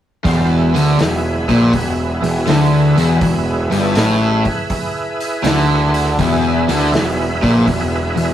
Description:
blues rock power trio and southern rock; 81 BPM; 4/4; swing 67% on 8ths; E mixolydian; A4 = 441 Hz
overdriven tonewheel organ; sustained chords; 0.2-8.3 s; E4 to F5; -22 LUFS; right 2 dB; slow rotary speaker, chorus vibrato
crunchy overdriven guitar; riff; 0.2-8.3 s; E2 to D3; -15 LUFS; equal; spring reverb
fuzz picked electric bass; bass; 0.2-8.3 s; E1 to D2; -20 LUFS; equal; overdrive
vintage drum kit; drums; 0.2-8.3 s; hi-hat, kick drum, snare drum; -23 LUFS; equal
light reverb; rough rehearsal-room recording; -13 LUFS; side -11 dB against mid
0.3-8.3 A section
0.3 E

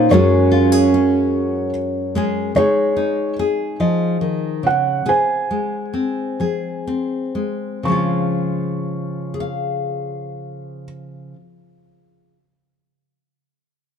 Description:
acoustic folk-pop ballad; 40-49 BPM (dotted quarters); 6/8; straight; Db major; A4 = 440 Hz
felt-muted upright piano; melody; 0.0-10.8 s; Gb4 to Db6; -20 LUFS; right 2 dB
mellow French horn; second line; 0.0-2.1 s; Db4; -18 LUFS; right 5 dB
nylon-string guitar; accompaniment; 0.0-12.4 s; Gb2 to F5; -20 LUFS; left 2 dB
moderate plate reverb, RT60 2.6 s; -17 LUFS; side -7 dB against mid
0.0-2.5 A section; 2.5-7.8 B section; 7.8-10.8 C section
slowing down 2.5-7.8
0.1 Gbsus2; 2.5 Dbsus2; 5.0 Fm/C; 7.8 Db

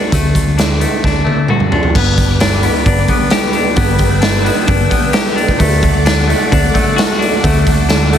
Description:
indie rock; 131 BPM; 4/4; straight; G major; A4 = 436 Hz
clean electric guitar; riff; 0.0-8.2 s; D3 to B4; -27 LUFS; right 12 dB
cranked stack guitar; riff; 0.0-8.2 s; A3 to G4; -17 LUFS; left 4 dB; overdrive
hollow-body short-scale picked electric bass; bass; 0.1-8.2 s; G1 to D2; -15 LUFS; equal
raw garage drum kit; drums; 0.1-8.2 s; crash cymbal, hi-hat, kick drum, snare drum, toms; -14 LUFS; right 1 dB
string machine, full ensemble; sustained chords; 1.9-8.2 s; A4 to E6; -21 LUFS; right 1 dB; ensemble chorus
light reverb; heavily compressed radio sound, multiband compression; -10 LUFS; side -9 dB against mid
0.0-1.9 A section; 1.9-8.2 B section
drum fill 1.0-1.9
0.0 D; 1.9 G; 5.6 D

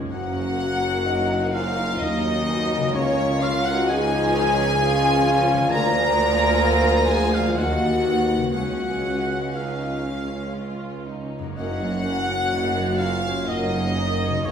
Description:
classical, slow romantic movement for symphony orchestra; 59-66 BPM; 3/4; rubato; F# major; A4 = 439 Hz
dark chamber violin section; second line; 0.0-14.5 s; A#3 to C#5; -32 LUFS; left 3 dB
dark symphonic viola section; accompaniment; 0.0-14.5 s; D#3 to C#4; -30 LUFS; equal
dark French horn section; sustained chords; 0.0-14.5 s; C#4 to A#4; -27 LUFS; left 1 dB
concert harp; arpeggios; 0.0-14.5 s; F#2 to C#6; -34 LUFS; left 3 dB
rich studio violin section; melody; 0.1-14.5 s; C#5 to A#5; -28 LUFS; left 2 dB
mellow hollow silver concert flute; second line; 0.1-14.5 s; C#5 to A#5; -31 LUFS; left 1 dB
warm oboe; second line; 0.1-14.5 s; C#5 to A#5; -29 LUFS; equal
clear tuba; bass; 0.1-14.5 s; F#1 to D#2; -30 LUFS; right 2 dB
rich symphonic double bass section; bass; 0.1-14.5 s; F#1 to D#2; -29 LUFS; right 1 dB
warm symphonic cello section; bass; 0.1-14.5 s; C#2 to F#2; -30 LUFS; right 2 dB
mellow bassoon; accompaniment; 1.1-14.5 s; B3 to F#4; -29 LUFS; right 1 dB
wet recital hall reverb, RT60 1.6 s; recorded in a church or concert hall; -19 LUFS; side -7 dB against mid
0.1-14.5 A section
0.1 F#; 3.0 C#; 5.7 A#7/D; 7.6 D#m; 8.5 C#; 11.6 F#

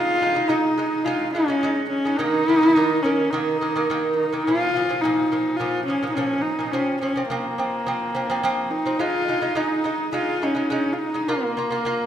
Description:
mongolian traditional, Mongolian folk; 106 BPM; 4/4; straight; Bb minor; A4 = 443 Hz
rich horsehead fiddle; melody; 0.0-12.1 s; Bb3 to F4; -21 LUFS; equal
lute; arpeggios; 0.0-12.1 s; Bb2 to F4; -25 LUFS; right 2 dB
wet recital hall reverb, RT60 1.3 s; minimal, uncompressed stereo recording; -20 LUFS; side -10 dB against mid
0.0-12.1 A section
0.0 Ab5; 2.2 Eb5; 4.5 Bb5; 6.7 F5; 9.0 Ab5; 11.3 Bb5

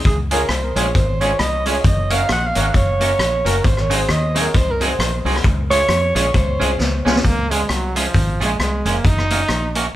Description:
ska; 134 BPM; 4/4; swing 59% on 8ths; Db major; A4 = 440 Hz
fingered electric bass; bass; 0.0-9.9 s; F1 to F2; -21 LUFS; equal
breathy alto saxophone; melody; 0.1-6.8 s; Ab4 to Gb5; -21 LUFS; right 1 dB; dub echo
vintage drum kit; drums; 0.1-9.8 s; hi-hat, kick drum, rim click, snare drum; -19 LUFS; equal
electric guitar at the edge of break-up; accompaniment; 0.3-9.9 s; Gb3 to Bb4; -24 LUFS; right 4 dB
bright upright piano; stabs; 0.3-7.2 s; C4 to Bb4; -28 LUFS; left 6 dB
brilliant trombone; melody; 7.1-9.8 s; F3 to Eb4; -23 LUFS; right 1 dB
light reverb; band playing live in one room; -15 LUFS; side -14 dB against mid
0.0-7.2 A section; 7.2-10.0 B section
alto saxophone solo 0.0-7.2; drum fill 6.8-7.2
0.1 Db; 1.9 Gb; 3.6 Ab7; 5.4 Db; 9.0 Gb

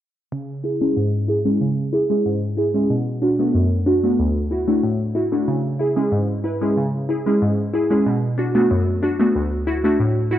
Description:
dancehall; 93 BPM; 4/4; straight; C# phrygian; A4 = 438 Hz
glassy wavetable pluck; accompaniment; 0.3-10.4 s; D2 to B4; -17 LUFS; equal; chorus, low-pass filter
light reverb, digital ambience; worn, warbling old tape, cassette tape, warbly pitch drift; -17 LUFS; side -11 dB against mid
0.3-10.4 A section
filter sweep on synth pluck 0.3-10.4
0.3 C#m; 2.9 Bm7; 4.2 Dadd9; 5.5 C#m; 8.1 Bm7; 9.4 Dadd9

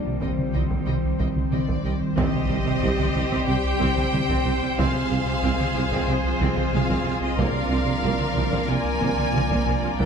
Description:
cinematic, hybrid orchestral and electronic film score; 92 BPM; 4/4; straight; C minor; A4 = 440 Hz
ethereal airy pad; sustained chords; 0.0-10.1 s; D3 to D5; -28 LUFS; right 1 dB; ensemble chorus, built-in reverb
mellow French horn section; sustained chords; 0.0-10.1 s; G3 to D4; -35 LUFS; left 6 dB
rich studio cello section; bass; 0.0-10.1 s; C3 to G3; -33 LUFS; right 3 dB
soft dub sub bass; bass; 0.0-10.1 s; C2; -31 LUFS; equal
round analog bass; riff; 0.1-10.1 s; C2 to C3; -30 LUFS; right 2 dB
warm symphonic violin section; melody; 0.2-10.1 s; C5 to Ab5; -30 LUFS; left 4 dB
rich studio violin section; second line; 0.2-10.1 s; G4 to Eb5; -30 LUFS; left 1 dB
rich symphonic viola section; accompaniment; 0.2-10.1 s; F3 to G4; -30 LUFS; right 2 dB
rich symphonic double bass section; bass; 0.2-10.1 s; C2; -33 LUFS; right 3 dB
solo taiko drums; drums; 0.2-10.1 s; -29 LUFS; equal
mellow tuba; bass; 2.2-10.1 s; C2; -32 LUFS; right 5 dB
impact; sound effects; 2.2-4.8 s; -34 LUFS; equal
moderate concert hall reverb, RT60 2.0 s; -20 LUFS; side -6 dB against mid
0.0-2.2 A section; 2.2-10.1 B section
impact 2.2-4.8
0.0 Cm; 4.8 Fm/C; 7.4 Bb/C

